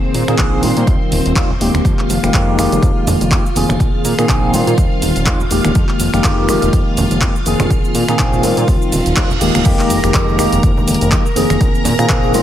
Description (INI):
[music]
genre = filtered disco house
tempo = 123 BPM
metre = 4/4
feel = swing 56% on 16ths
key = F minor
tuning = A4 = 442 Hz
[part]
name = tine electric piano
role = accompaniment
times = 0.0-12.4 s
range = Eb3 to Ab4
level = -16 LUFS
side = left 1 dB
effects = phaser, vintage 12-bit sampler grit, sidechain pumping, low-pass filter
[part]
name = string machine, full ensemble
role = sustained chords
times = 0.0-12.4 s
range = C4 to Bb5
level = -22 LUFS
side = equal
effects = ensemble chorus, vintage 12-bit sampler grit, sidechain pumping, low-pass filter
[part]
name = tube shaker and congas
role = percussion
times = 0.0-12.4 s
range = none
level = -25 LUFS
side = right 2 dB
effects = none
[part]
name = fat analog bass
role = bass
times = 0.1-12.4 s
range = Eb1 to Bb2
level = -18 LUFS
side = equal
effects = tube saturation, sidechain pumping, low-pass filter
[part]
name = punchy analog drum machine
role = drums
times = 0.1-12.4 s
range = cabasa, crash cymbal, finger snaps, handclaps, hi-hat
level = -21 LUFS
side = equal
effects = overdrive
[part]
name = electronic kick drum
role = drums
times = 0.4-12.2 s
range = none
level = -16 LUFS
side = equal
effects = overdrive
[part]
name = reverse cymbal and impact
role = sound effects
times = 8.9-11.6 s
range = none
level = -27 LUFS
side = right 2 dB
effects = none
[sound]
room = light reverb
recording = none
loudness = -12 LUFS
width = side -11 dB against mid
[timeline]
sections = 0.0-9.7 A section; 9.7-12.4 B section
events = reverse cymbal 8.9-9.7; drop 9.7-12.4; impact 9.7-11.6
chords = 0.0 Bb9sus4; 0.9 Eb69; 1.9 Fm11; 3.8 Bb9sus4; 4.8 Eb69; 5.8 Fm11; 7.7 Bb9sus4; 8.7 Eb69; 9.7 Fm11; 11.6 Bb9sus4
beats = 0.39 0.88 1.36 | 1.85 2.34 2.83 3.31 | 3.80 4.29 4.78 5.27 | 5.75 6.24 6.73 7.22 | 7.71 8.19 8.68 9.17 | 9.66 10.14 10.63 11.12 | 11.61 12.10